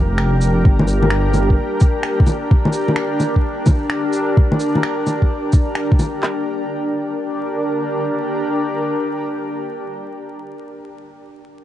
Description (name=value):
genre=future garage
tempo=129 BPM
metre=4/4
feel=swing 66% on 16ths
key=G minor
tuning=A4 = 440 Hz
part: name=granular cloud pad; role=sustained chords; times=0.0-10.7 s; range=D4 to Bb4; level=-20 LUFS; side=equal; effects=built-in reverb, sidechain pumping
part: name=swelling detuned saw bass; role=bass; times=0.0-1.6 s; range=F1 to G1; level=-16 LUFS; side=equal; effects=sidechain pumping
part: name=electronic finger snaps, shaker and bongos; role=drums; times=0.2-6.1 s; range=none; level=-20 LUFS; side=left 1 dB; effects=none
part: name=organic electronic drum kit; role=drums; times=0.7-6.4 s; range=handclaps, kick drum, snare drum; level=-14 LUFS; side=equal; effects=none
room=light reverb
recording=vinyl crackle, nothing above 10.7 kHz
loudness=-15 LUFS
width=side -12 dB against mid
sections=0.0-6.2 A section; 6.2-9.9 B section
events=none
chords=0.0 Gm